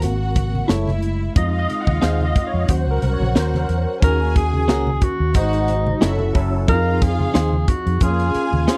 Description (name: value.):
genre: lush 1970s-style soul.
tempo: 90 BPM.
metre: 4/4.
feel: swing 54% on 16ths.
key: Eb dorian.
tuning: A4 = 440 Hz.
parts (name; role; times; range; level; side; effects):
warm studio string section; second line; 0.0-8.8 s; Fb4 to Ab5; -32 LUFS; equal; none.
barky tine electric piano; accompaniment; 0.0-8.8 s; Eb3 to Gb5; -27 LUFS; equal; overdrive, ensemble chorus.
vintage muted fingered electric bass; bass; 0.0-8.7 s; Gb1 to F2; -23 LUFS; equal; none.
tight funk drum kit; drums; 0.0-8.8 s; hi-hat, kick drum, snare drum; -20 LUFS; equal; none.
congas; percussion; 0.0-8.8 s; none; -30 LUFS; equal; none.
direct-recorded clean electric guitar; riff; 0.7-8.8 s; Db4 to Db5; -26 LUFS; equal; none.
breathy tenor saxophone; melody; 4.0-8.8 s; Eb4 to Bb4; -25 LUFS; equal; none.
room: studio reverb.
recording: dry, close 1970s-style studio recording.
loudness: -19 LUFS.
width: mono.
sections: 0.0-4.0 A section; 4.0-8.8 B section.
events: tine electric piano solo 0.0-4.0.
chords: 0.0 Ab7; 0.7 Gbm7; 1.4 Fm7; 2.7 Ebm7; 5.3 Ab7; 6.0 Gbm7; 6.7 Fm7; 8.0 Bbm7.